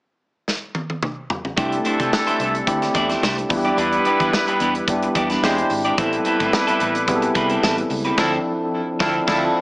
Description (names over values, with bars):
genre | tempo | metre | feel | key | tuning
polished 1980s jazz-funk pop | 109 BPM | 4/4 | swing 54% on 16ths | C major | A4 = 440 Hz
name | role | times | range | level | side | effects
modern studio drum kit | drums | 0.5-9.5 s | crash cymbal, hi-hat, kick drum, snare drum, toms | -24 LUFS | equal | none
clear horn section | second line | 1.6-9.4 s | E3 to B#4 | -24 LUFS | equal | tape echo
bell-like tine electric piano | accompaniment | 1.6-9.6 s | F3 to A4 | -21 LUFS | equal | medium stereo tremolo, lush chorus
electric guitar at the edge of break-up | riff | 1.6-9.5 s | F3 to D5 | -23 LUFS | right 1 dB | lush chorus
vintage muted fingered electric bass | bass | 1.6-9.5 s | G#1 to E3 | -31 LUFS | equal | none
room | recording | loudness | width
light reverb, small room ambience | small speaker sound | -17 LUFS | side -26 dB against mid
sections
0.0-1.6 A section; 1.6-9.6 B section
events
drum fill 0.5-1.6; band accent 8.2-9.6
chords
0.0 N.C.; 1.6 C69; 3.5 Em7; 5.4 E7alt; 6.0 Am7; 8.2 Dm9